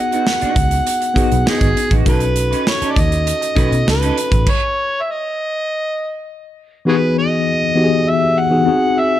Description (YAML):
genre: lush 1970s-style soul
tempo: 100 BPM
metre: 4/4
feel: straight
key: E major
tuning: A4 = 441 Hz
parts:
  - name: overdriven harmonica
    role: melody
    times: 0.0-9.2 s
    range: F#4 to F#5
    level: -18 LUFS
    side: right 1 dB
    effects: none
  - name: mellow tine electric piano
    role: accompaniment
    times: 0.0-9.2 s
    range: E3 to A4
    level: -18 LUFS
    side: left 4 dB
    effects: medium stereo tremolo
  - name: electric guitar through a small old amp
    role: riff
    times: 0.1-4.4 s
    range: B3 to B4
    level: -25 LUFS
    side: right 6 dB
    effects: analog chorus
  - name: modern studio drum kit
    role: drums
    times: 0.1-4.6 s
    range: crash cymbal, hi-hat, kick drum, snare drum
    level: -18 LUFS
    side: right 1 dB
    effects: none
  - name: vintage muted fingered electric bass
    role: bass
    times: 0.4-4.4 s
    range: G#1 to B2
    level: -18 LUFS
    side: equal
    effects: none
room: light reverb, small room reverb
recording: none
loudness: -14 LUFS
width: side -12 dB against mid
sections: 0.0-6.9 A section; 6.9-9.2 B section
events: stop 4.5-6.9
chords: 0.0 G#m7; 2.1 B9; 6.9 Emaj7; 8.7 G#7